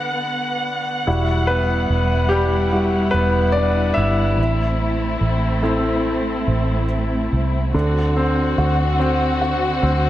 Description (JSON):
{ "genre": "pop", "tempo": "72 BPM", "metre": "4/4", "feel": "straight", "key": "E minor", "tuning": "A4 = 440 Hz", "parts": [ { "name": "clear concert grand piano", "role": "accompaniment", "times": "0.0-10.1 s", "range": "D3 to E5", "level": "-21 LUFS", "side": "left 1 dB", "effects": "none" }, { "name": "warm studio string section", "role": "sustained chords", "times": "0.0-10.1 s", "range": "D3 to F#5", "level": "-23 LUFS", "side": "equal", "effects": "none" }, { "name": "vintage muted fingered electric bass", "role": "bass", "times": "1.1-10.1 s", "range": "E1 to D2", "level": "-20 LUFS", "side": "right 1 dB", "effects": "none" } ], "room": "light reverb, studio reverb", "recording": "none", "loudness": "-17 LUFS", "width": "side -13 dB against mid", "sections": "0.0-7.7 A section; 7.7-10.1 B section", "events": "grand piano solo 0.0-7.7", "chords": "0.0 Bm/D; 1.1 Emadd9; 4.4 Am; 7.7 D7", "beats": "0.25 | 1.07 1.90 2.73 3.56 | 4.38 5.21 6.05 6.89 | 7.74 8.58 9.41" }